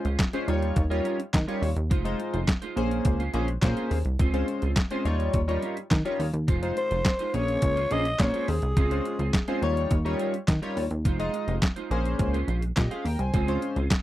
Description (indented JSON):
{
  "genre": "early-eighties boogie funk",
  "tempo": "105 BPM",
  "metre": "4/4",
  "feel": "straight",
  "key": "unclear",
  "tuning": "A4 = 443 Hz",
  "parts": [
    { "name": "chorused polysynth", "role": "accompaniment", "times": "0.0-13.8 s", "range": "G3 to Ab5", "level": "-29 LUFS", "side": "left 2 dB", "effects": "none" },
    { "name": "detuned 8-bit digital drum machine", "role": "drums", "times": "0.0-14.0 s", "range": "handclaps, hi-hat, kick drum, snare drum", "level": "-24 LUFS", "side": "equal", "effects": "overdrive" },
    { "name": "clean electric guitar", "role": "riff", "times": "0.1-13.9 s", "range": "G3 to C5", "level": "-34 LUFS", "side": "right 5 dB", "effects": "analog chorus" },
    { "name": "plucky analog bass", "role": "bass", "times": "0.1-13.9 s", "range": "F1 to Eb3", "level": "-27 LUFS", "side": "equal", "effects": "none" },
    { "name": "growling alto saxophone", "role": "melody", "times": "6.8-9.6 s", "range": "Ab4 to Eb5", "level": "-29 LUFS", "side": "left 1 dB", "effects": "none" }
  ],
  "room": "little or no reverb",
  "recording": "dry, close 1970s-style studio recording",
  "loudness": "-24 LUFS",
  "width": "side -14 dB against mid",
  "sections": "0.0-14.0 A section",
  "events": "none",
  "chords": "0.5 Eb9; 1.9 Fm7; 2.8 Bbm9; 4.2 Dbmaj7; 5.1 Eb9; 6.5 Fm7; 7.3 Bbm9; 8.8 Dbmaj7; 9.6 Eb9; 11.1 Fm7; 11.9 Bbm9; 13.3 Dbmaj7"
}